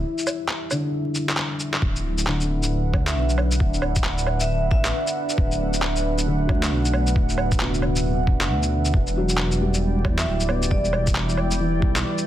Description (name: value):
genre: future garage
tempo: 135 BPM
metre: 4/4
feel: swing 62% on 16ths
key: unclear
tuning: A4 = 440 Hz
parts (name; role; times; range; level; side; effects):
- felt-muted upright piano; accompaniment; 0.0-12.3 s; B2 to B3; -28 LUFS; left 1 dB; sidechain pumping, ping-pong delay
- deep dark ambient pad; sustained chords; 0.0-12.3 s; D4 to G5; -28 LUFS; right 1 dB; chorus, built-in reverb, vintage 12-bit sampler grit, sidechain pumping
- dark detuned saw bass; bass; 0.0-12.0 s; D1 to E2; -24 LUFS; equal; tube saturation
- electronic shaker, woodblock and handclaps; drums; 0.2-12.2 s; none; -26 LUFS; equal; studio ambience
- electronic kick drum; drums; 1.8-11.9 s; none; -22 LUFS; equal; studio ambience
- vibraphone with medium hard mallets; melody; 3.1-5.1, 10.2-10.9 s; D5 to E5; -31 LUFS; equal; vintage 12-bit sampler grit, dub echo
room: light reverb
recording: dense, heavily limited modern master, vinyl crackle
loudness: -20 LUFS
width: side -12 dB against mid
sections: 0.0-1.8 A section; 1.8-12.3 B section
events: break 0.0-1.8; drum fill 1.4-1.8; band accent 1.7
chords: 0.0 Em7; 1.8 D69; 8.9 Em7